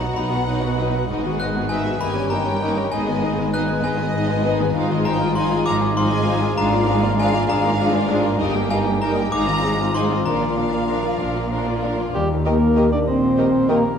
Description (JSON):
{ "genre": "cinematic, playful, whimsical film cue", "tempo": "65 BPM (dotted quarters)", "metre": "6/8", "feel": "straight", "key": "Eb major from 4.7 s", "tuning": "A4 = 441 Hz", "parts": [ { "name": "glockenspiel with brass mallets", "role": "melody", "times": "0.0-11.8 s", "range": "G#5 to F#6", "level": "-26 LUFS", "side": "left 2 dB", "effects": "none" }, { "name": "rich studio violin section", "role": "melody", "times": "0.0-13.8 s", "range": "D#5 to Bb5", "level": "-30 LUFS", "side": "left 2 dB", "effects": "none" }, { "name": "rich studio violin section", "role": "second line", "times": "0.0-13.8 s", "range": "F4 to G#5", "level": "-28 LUFS", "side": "left 1 dB", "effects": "none" }, { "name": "rich studio viola section", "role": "accompaniment", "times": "0.0-13.8 s", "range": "F3 to G4", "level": "-25 LUFS", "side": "right 1 dB", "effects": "none" }, { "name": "concert harp", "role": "arpeggios", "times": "0.0-14.0 s", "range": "G2 to B5", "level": "-26 LUFS", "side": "left 6 dB", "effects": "none" }, { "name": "rich studio double bass section", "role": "bass", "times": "0.0-13.8 s", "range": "G1 to Eb2", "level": "-27 LUFS", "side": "right 4 dB", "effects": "none" }, { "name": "warm studio cello section", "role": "bass", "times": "0.0-13.8 s", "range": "Eb2 to B2", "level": "-26 LUFS", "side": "right 2 dB", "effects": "none" }, { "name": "dark French horn section", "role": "sustained chords", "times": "0.5-13.8 s", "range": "Eb3 to Eb4", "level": "-24 LUFS", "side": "left 1 dB", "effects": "none" }, { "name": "mellow cor anglais", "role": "second line", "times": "12.1-14.0 s", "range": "G4 to D5", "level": "-25 LUFS", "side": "right 2 dB", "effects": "none" }, { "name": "dark clarinet", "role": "second line", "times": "12.5-13.8 s", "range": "G4", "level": "-29 LUFS", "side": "left 1 dB", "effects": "none" }, { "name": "mellow hollow concert flute", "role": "second line", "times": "12.5-13.8 s", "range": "G5", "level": "-35 LUFS", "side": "left 2 dB", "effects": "none" }, { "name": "clear bassoon", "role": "accompaniment", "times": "12.5-13.8 s", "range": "Eb3", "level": "-27 LUFS", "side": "equal", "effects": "none" } ], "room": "moderate scoring stage reverb, RT60 1.5 s", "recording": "none", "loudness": "-17 LUFS", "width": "side -7 dB against mid", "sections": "0.0-12.1 A section; 12.1-14.0 B section", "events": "none", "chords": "0.0 B; 1.1 G#m7; 2.0 D#7/G; 2.9 G#m; 4.7 Fm7/Ab; 6.6 Bb7/Ab; 8.4 Eb/G; 9.3 Fm7/Ab; 10.3 Bb; 12.1 Eb" }